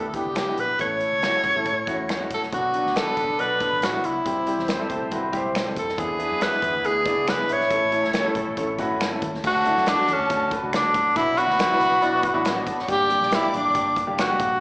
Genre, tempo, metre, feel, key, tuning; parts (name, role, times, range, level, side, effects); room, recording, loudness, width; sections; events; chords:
uptempo 1960s-style soul; 139 BPM; 4/4; straight; D major; A4 = 441 Hz
breathy tenor saxophone; melody; 0.0-14.6 s; C#4 to C#5; -21 LUFS; equal
clear horn section; second line; 0.0-9.2 s; A3 to E5; -34 LUFS; right 1 dB; slapback echo
warm grand piano; accompaniment; 0.0-14.5 s; F#3 to A4; -28 LUFS; equal
vintage muted fingered electric bass; bass; 0.0-14.6 s; F#1 to A2; -38 LUFS; equal
natural country drum kit; drums; 0.1-14.5 s; crash cymbal, hi-hat, kick drum, snare drum; -29 LUFS; equal
finger snap; percussion; 0.4-14.3 s; -34 LUFS; right 1 dB
electric guitar through a small old amp; riff; 3.4-12.9 s; E4 to D5; -31 LUFS; equal; spring reverb, slapback echo
warm studio violin section; second line; 9.4-14.4 s; E4 to D6; -30 LUFS; equal; slapback echo, tape echo
moderate plate reverb, RT60 1.0 s, small room ambience; live gig heard through the venue's PA, club reverb, small speaker sound; -20 LUFS; side -25 dB against mid
0.0-2.5 A section; 2.5-9.4 B section; 9.4-14.6 C section
0.0 Em7; 0.8 A; 2.5 Bm; 4.3 C; 6.0 E7; 7.7 A; 9.4 D; 11.2 Bm; 12.9 Gm